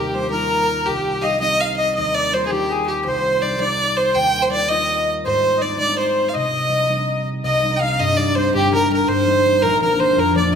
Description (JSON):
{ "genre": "celtic folk, Celtic jig", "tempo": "110 BPM (dotted quarters)", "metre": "6/8", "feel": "straight", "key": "C minor", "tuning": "A4 = 439 Hz", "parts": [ { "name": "clear fiddle", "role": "melody", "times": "0.0-10.5 s", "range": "G4 to G5", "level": "-19 LUFS", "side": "right 1 dB", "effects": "none" }, { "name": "accordion", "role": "second line", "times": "0.0-10.5 s", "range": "G4 to G5", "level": "-22 LUFS", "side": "left 2 dB", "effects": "none" }, { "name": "concert harp", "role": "accompaniment", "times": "0.0-10.6 s", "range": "G1 to F4", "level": "-22 LUFS", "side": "left 1 dB", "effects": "none" } ], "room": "moderate recital hall reverb, RT60 1.6 s", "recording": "none", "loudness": "-16 LUFS", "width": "side -7 dB against mid", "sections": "0.0-7.4 A section; 7.4-10.6 B section", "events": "none", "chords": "0.0 Ebadd9; 0.9 Cm; 2.0 Ebadd9; 3.1 Cm; 4.2 Ebadd9; 5.3 Ab; 6.4 Cm; 9.6 Bb" }